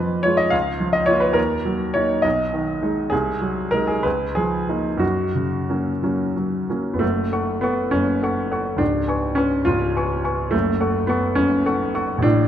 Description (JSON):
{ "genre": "classical, romantic character piece for solo piano", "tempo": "59-73 BPM (dotted quarters)", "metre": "6/8", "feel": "rubato", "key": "F# major, F# minor from 7.0 s", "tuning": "A4 = 444 Hz", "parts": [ { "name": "clear baby grand piano", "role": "solo", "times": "0.0-12.5 s", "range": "C#1 to C#6", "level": "-18 LUFS", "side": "equal", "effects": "none" } ], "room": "moderate scoring stage reverb, RT60 1.9 s", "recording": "none", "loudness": "-19 LUFS", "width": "side -10 dB against mid", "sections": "0.0-7.0 A section; 7.0-12.5 B section", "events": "none", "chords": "0.0 Fdim; 0.5 A#m/C#; 1.4 D#m; 2.2 G#m/B; 3.1 G#7/B#; 4.0 C#69; 5.0 F#; 7.0 F#m; 8.8 C#7; 10.5 F#m" }